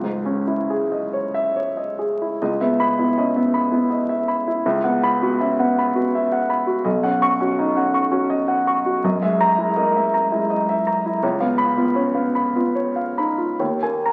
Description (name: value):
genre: classical, impressionist solo piano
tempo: 67-84 BPM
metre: 3/4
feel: rubato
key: C# dorian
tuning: A4 = 440 Hz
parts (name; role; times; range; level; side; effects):
- warm grand piano; solo; 0.0-14.1 s; B1 to C#6; -20 LUFS; equal; none
room: wet recital hall reverb, RT60 1.2 s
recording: very old 78 rpm record, vinyl crackle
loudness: -20 LUFS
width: mono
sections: 0.0-2.4 A section; 2.4-14.1 A section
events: none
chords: 0.0 C#madd9; 2.4 C#m9; 4.6 Esus2/C#; 6.9 Badd9; 9.0 F#13; 11.2 C#9; 13.6 D#7sus4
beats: 0.69 1.55 | 2.40 3.15 3.88 | 4.65 5.40 6.13 | 6.85 7.59 8.30 | 9.05 9.78 10.51 | 11.23 11.96 12.75 | 13.60